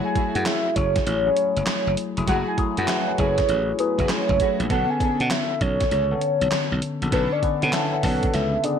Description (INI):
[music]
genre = R&B, new jack swing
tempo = 99 BPM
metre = 4/4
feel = swing 65% on 16ths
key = F# minor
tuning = A4 = 444 Hz
[part]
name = soft octave-layered synth lead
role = melody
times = 0.0-8.8 s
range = B4 to G#5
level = -24 LUFS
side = equal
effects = chorus, phaser
[part]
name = tine electric piano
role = accompaniment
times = 0.0-8.8 s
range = C#3 to B4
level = -27 LUFS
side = left 4 dB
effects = phaser
[part]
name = warm studio string section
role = stabs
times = 0.0-8.2 s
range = A3 to A4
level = -30 LUFS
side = right 3 dB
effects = none
[part]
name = glassy slap bass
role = bass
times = 0.2-8.6 s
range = E#1 to B2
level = -25 LUFS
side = right 1 dB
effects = none
[part]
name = gated 80s digital drum machine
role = drums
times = 0.2-8.8 s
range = handclaps, hi-hat, kick drum, snare drum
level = -26 LUFS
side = right 1 dB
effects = gated reverb, gated reverb snare
[sound]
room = light reverb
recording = none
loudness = -20 LUFS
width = side -7 dB against mid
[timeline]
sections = 0.0-8.8 A section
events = none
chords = 0.0 F#m9; 4.7 Bm9